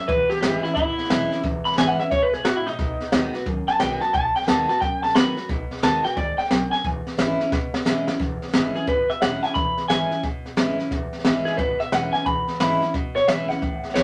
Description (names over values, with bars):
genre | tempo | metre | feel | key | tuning
rockabilly | 177 BPM | 4/4 | swing 64% on 8ths | E major | A4 = 441 Hz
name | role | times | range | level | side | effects
electric guitar through a small old amp | melody | 0.0-14.0 s | D#4 to B5 | -25 LUFS | equal | none
picked steel-string acoustic guitar | accompaniment | 0.0-14.0 s | E2 to F#4 | -29 LUFS | equal | none
upright bass | bass | 0.0-14.0 s | E1 to F#2 | -39 LUFS | equal | none
jazz brush drum kit | drums | 0.1-14.0 s | hi-hat, kick drum, snare drum | -27 LUFS | equal | none
room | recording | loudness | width
moderate small room reverb, RT60 0.5 s | none | -22 LUFS | mono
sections
0.0-8.2 A section; 8.2-14.0 B section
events
clean electric guitar solo 0.0-8.2; drum fill 7.5-8.2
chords
0.1 E6; 2.8 B6; 6.8 E6